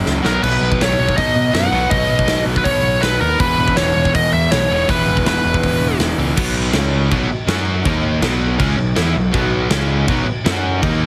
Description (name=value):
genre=punk rock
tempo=162 BPM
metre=4/4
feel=straight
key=B major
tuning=A4 = 440 Hz
part: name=crunchy overdriven guitar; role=riff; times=0.0-11.1 s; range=E2 to F#4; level=-23 LUFS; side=equal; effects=none
part: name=distorted electric guitar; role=riff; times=0.0-11.1 s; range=E2 to F#4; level=-26 LUFS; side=equal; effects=distortion
part: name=fuzz picked electric bass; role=bass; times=0.1-11.1 s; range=E1 to B2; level=-23 LUFS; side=equal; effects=overdrive
part: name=big rock drum kit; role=drums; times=0.1-10.9 s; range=crash cymbal, hi-hat, kick drum, snare drum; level=-23 LUFS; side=equal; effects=none
part: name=biting lead guitar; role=melody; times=0.3-6.0 s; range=A#4 to F#5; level=-20 LUFS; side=equal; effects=overdrive
room=light reverb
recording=heavily compressed radio sound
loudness=-16 LUFS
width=mono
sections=0.0-6.4 A section; 6.4-11.1 B section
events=drum fill 0.1-0.4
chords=0.2 B; 3.4 E5; 6.4 B5; 6.7 C#5; 7.1 B5; 7.5 F#5; 7.9 D#5; 8.2 B5; 9.7 C#5; 10.1 B5; 10.5 F#5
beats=0.06 | 0.43 0.80 1.17 1.54 | 1.91 2.29 2.66 3.03 | 3.40 3.77 4.14 4.51 | 4.89 5.26 5.63 6.00 | 6.37 6.74 7.12 7.49 | 7.86 8.23 8.60 8.97 | 9.34 9.71 10.08 10.46 | 10.83